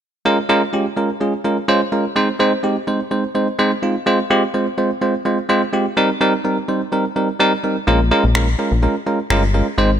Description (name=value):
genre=dance-pop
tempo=126 BPM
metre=4/4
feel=straight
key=Bb dorian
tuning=A4 = 439 Hz
part: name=bell-like tine electric piano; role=accompaniment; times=0.3-9.9 s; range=G3 to C5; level=-16 LUFS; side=right 1 dB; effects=none
part: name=chorused synth bass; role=bass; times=7.9-10.0 s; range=G1 to Bb1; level=-16 LUFS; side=left 1 dB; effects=none
part: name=electronic finger snaps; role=drums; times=8.4-9.4 s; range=none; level=-25 LUFS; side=left 1 dB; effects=none
room=light reverb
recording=none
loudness=-15 LUFS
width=side -9 dB against mid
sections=0.3-10.0 A section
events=none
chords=0.3 Bbm7; 2.2 Ab; 4.1 Fm; 6.0 Cm7; 7.9 Bbm7